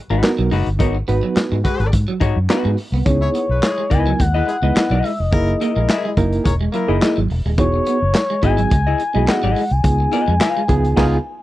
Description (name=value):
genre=funk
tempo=106 BPM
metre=4/4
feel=straight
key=unclear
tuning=A4 = 439 Hz
part: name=hollow-body jazz guitar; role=accompaniment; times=0.1-11.2 s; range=D#4 to E#5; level=-23 LUFS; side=left 8 dB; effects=none
part: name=clean electric guitar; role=riff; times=0.1-10.8 s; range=E3 to C#4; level=-26 LUFS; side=right 4 dB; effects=lush chorus
part: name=vintage muted fingered electric bass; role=bass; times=0.1-11.2 s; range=D#1 to G#2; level=-18 LUFS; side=equal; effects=none
part: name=reed electric piano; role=stabs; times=0.2-11.2 s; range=A#3 to B4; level=-21 LUFS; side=right 3 dB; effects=overdrive, fast tremolo
part: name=crunchy breakbeat drum kit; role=drums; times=0.2-11.2 s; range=crash cymbal, handclaps, hi-hat, kick drum, snare drum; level=-19 LUFS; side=equal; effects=none
part: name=clear horn section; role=second line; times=1.6-7.0 s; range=G#3 to C#5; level=-25 LUFS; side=left 4 dB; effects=none
part: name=expressive synth lead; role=melody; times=3.1-11.4 s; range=C#5 to G#5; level=-22 LUFS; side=left 2 dB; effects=chorus
room=small room ambience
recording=dry, close 1970s-style studio recording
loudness=-15 LUFS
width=side -15 dB against mid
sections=0.0-3.1 A section; 3.1-11.4 B section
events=band accent 11.0-11.4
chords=0.0 G#m7; 3.1 C#m9; 5.3 F#13; 7.6 Emaj7; 9.8 C#9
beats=0.24 | 0.80 1.37 1.93 2.50 | 3.06 3.63 4.19 4.76 | 5.32 5.89 6.45 7.02 | 7.58 8.15 8.72 9.28 | 9.85 10.41 10.98